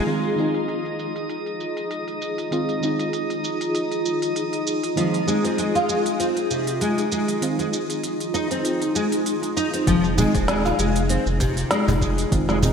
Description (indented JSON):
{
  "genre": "organic downtempo",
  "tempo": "98 BPM",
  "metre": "4/4",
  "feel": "swing 55% on 16ths",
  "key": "F minor pentatonic",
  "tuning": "A4 = 440 Hz",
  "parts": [
    { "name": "deep mellow chord stab", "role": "accompaniment", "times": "0.0-12.7 s", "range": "Eb3 to F4", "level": "-27 LUFS", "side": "right 1 dB", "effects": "chorus, sidechain pumping, digital delay" },
    { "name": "granular cloud pad", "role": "sustained chords", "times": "0.0-12.7 s", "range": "Eb4 to Ab4", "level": "-26 LUFS", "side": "equal", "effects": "built-in reverb, sidechain pumping" },
    { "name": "drifting glass-harmonics texture", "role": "texture", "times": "0.0-9.9 s", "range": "Eb4 to Eb5", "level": "-32 LUFS", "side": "equal", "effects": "chorus, built-in reverb" },
    { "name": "organic electronic drum kit", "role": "drums", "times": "0.1-12.7 s", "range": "hi-hat, shaker, snare drum", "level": "-29 LUFS", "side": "right 1 dB", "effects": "low-pass filter on hats, low-pass filter on perc, low-pass filter on snare, low-pass filter on room, gated reverb" },
    { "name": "nylon-string guitar", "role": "arpeggios", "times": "5.0-12.6 s", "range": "C3 to F4", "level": "-24 LUFS", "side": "equal", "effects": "ensemble chorus, digital delay" },
    { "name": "round analog bass", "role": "bass", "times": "9.9-12.7 s", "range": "Eb1 to F1", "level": "-24 LUFS", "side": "equal", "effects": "sidechain pumping" },
    { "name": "electronic kick drum", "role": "drums", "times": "9.9-12.5 s", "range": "none", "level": "-25 LUFS", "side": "equal", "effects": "none" },
    { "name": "cajon", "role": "percussion", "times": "10.2-12.7 s", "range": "none", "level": "-27 LUFS", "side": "right 1 dB", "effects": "none" }
  ],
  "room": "wet lush hall reverb, RT60 2.1 s",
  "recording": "bright 1980s-style digital production",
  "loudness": "-20 LUFS",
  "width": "side -6 dB against mid",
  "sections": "0.1-9.9 A section; 9.9-12.7 B section",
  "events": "filter sweep on ambient pad 0.1-9.9",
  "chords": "0.1 Fm7",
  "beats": "| 0.07 0.69 1.30 1.91 | 2.52 3.13 3.75 4.36 | 4.97 5.58 6.20 6.81 | 7.42 8.03 8.64 9.26 | 9.87 10.48 11.09 11.71 | 12.32"
}